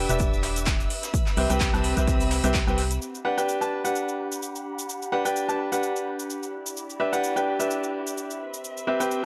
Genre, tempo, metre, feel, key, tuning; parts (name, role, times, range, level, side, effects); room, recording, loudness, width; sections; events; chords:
piano house; 128 BPM; 4/4; swing 55% on 16ths; G major; A4 = 436 Hz
clear studio violin section; sustained chords; 0.0-9.2 s; C4 to E6; -40 LUFS; equal; vintage 12-bit sampler grit, sidechain pumping, low-pass filter
bright grand piano; riff; 0.0-9.2 s; C4 to A5; -29 LUFS; equal; sidechain pumping, analog delay
organ-like FM bass; bass; 0.0-3.0 s; E1 to C2; -29 LUFS; equal; sidechain pumping
warbly tape-like pad; texture; 0.0-9.2 s; C4 to B5; -40 LUFS; equal; chorus, built-in reverb, sidechain pumping
house drum kit; drums; 0.1-9.2 s; handclaps, hi-hat, shaker; -34 LUFS; equal
electronic kick drum; drums; 0.2-2.6 s; -28 LUFS; equal
soft brush drum kit; drums; 0.2-2.9 s; hi-hat, shaker, snare drum; -39 LUFS; equal; sidechain pumping on hats, high-pass filter on hats, high-pass filter on snare, sidechain pumping on perc, high-pass filter on perc, high-pass filter on room
small room ambience; dry, gritty hardware recording; -26 LUFS; mono
0.0-3.0 A section; 3.0-9.2 B section
band accent 2.5; filter sweep on violin section 3.0-9.2
0.0 Em7; 0.9 Cmaj7; 3.0 Gmaj7; 6.5 Em7; 8.4 Cmaj7